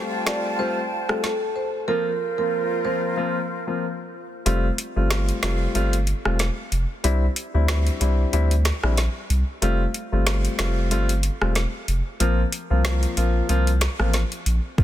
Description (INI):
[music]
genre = dancehall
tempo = 93 BPM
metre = 4/4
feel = swing 56% on 16ths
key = F major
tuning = A4 = 437 Hz
[part]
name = warm baby grand piano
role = accompaniment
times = 0.0-14.8 s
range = F3 to F4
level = -27 LUFS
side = left 3 dB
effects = sidechain pumping
[part]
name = breathy flute section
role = sustained chords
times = 0.0-4.4 s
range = F4 to A5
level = -30 LUFS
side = left 1 dB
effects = sidechain pumping
[part]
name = swell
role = sound effects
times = 1.8-3.2 s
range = none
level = -45 LUFS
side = right 2 dB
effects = none
[part]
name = marimba with medium mallets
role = melody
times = 0.3-3.1 s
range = A4 to D5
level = -26 LUFS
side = right 3 dB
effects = ping-pong delay
[part]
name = afro-pop drum kit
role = drums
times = 0.3-14.8 s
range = finger snaps, hi-hat, kick drum, rim click, snare drum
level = -26 LUFS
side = equal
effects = soft clipping on snare
[part]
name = warm sub bass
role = bass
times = 4.5-14.8 s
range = E1 to D2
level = -21 LUFS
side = equal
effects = none
[sound]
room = small room ambience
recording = dense, heavily limited modern master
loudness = -20 LUFS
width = side -12 dB against mid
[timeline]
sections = 0.0-4.5 A section; 4.5-14.8 B section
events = kick muted 4.5-14.8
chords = 0.0 Fadd9; 1.9 Bbsus2; 4.5 Fadd9; 7.0 Cadd9; 9.6 Fadd9; 12.2 Bbsus2